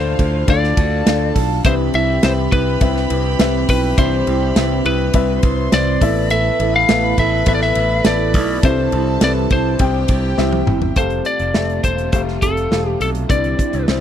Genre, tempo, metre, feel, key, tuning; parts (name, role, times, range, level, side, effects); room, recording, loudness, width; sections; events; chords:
piano-driven pop; 103 BPM; 4/4; straight; C major; A4 = 442 Hz
lightly driven lead guitar; melody; 0.0-13.8 s; A4 to F5; -20 LUFS; left 3 dB
warm studio violin section; second line; 0.0-10.9 s; F4 to C6; -26 LUFS; right 4 dB; tape echo
warm upright piano; accompaniment; 0.0-14.0 s; G2 to G5; -22 LUFS; left 11 dB
fingerpicked steel-string acoustic guitar; riff; 0.0-14.0 s; A2 to C5; -24 LUFS; right 18 dB
modern bright picked electric bass; bass; 0.0-14.0 s; E1 to D2; -20 LUFS; equal
modern studio drum kit; drums; 0.2-14.0 s; hi-hat, kick drum, ride cymbal, snare drum, toms; -17 LUFS; right 1 dB
warm studio string section; sustained chords; 11.0-14.0 s; C3 to F4; -31 LUFS; right 6 dB
little or no reverb; dry, close 1970s-style studio recording; -14 LUFS; side -10 dB against mid
0.0-11.0 A section; 11.0-14.0 B section
drum fill 10.4-11.0
0.0 Dm; 1.6 Cmaj7; 6.0 Asus2; 8.6 C; 11.0 Fadd9; 13.3 Cadd9